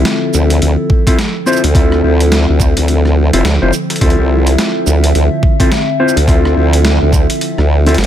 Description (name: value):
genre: glitch hop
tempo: 106 BPM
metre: 4/4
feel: swing 60% on 16ths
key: D minor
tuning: A4 = 440 Hz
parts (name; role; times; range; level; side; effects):
- warbly tape-like pad; sustained chords; 0.0-8.1 s; D3 to E5; -18 LUFS; equal; chorus, built-in reverb, sidechain pumping
- mellow electric guitar; stabs; 0.0-8.0 s; C4 to C5; -16 LUFS; left 2 dB; sidechain pumping, ping-pong delay
- formant-sweep wobble bass; bass; 0.0-8.1 s; F1 to D2; -11 LUFS; equal; chorus, overdrive
- boom bap sampler-style drum kit; drums; 0.1-8.1 s; hi-hat, rim click, shaker, snare drum; -18 LUFS; right 1 dB; studio reverb
- electronic kick drum; drums; 0.9-7.3 s; none; -12 LUFS; equal; overdrive, studio reverb
room: little or no reverb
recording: none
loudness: -9 LUFS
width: side -10 dB against mid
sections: 0.0-8.1 A section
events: none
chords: 0.0 Dm9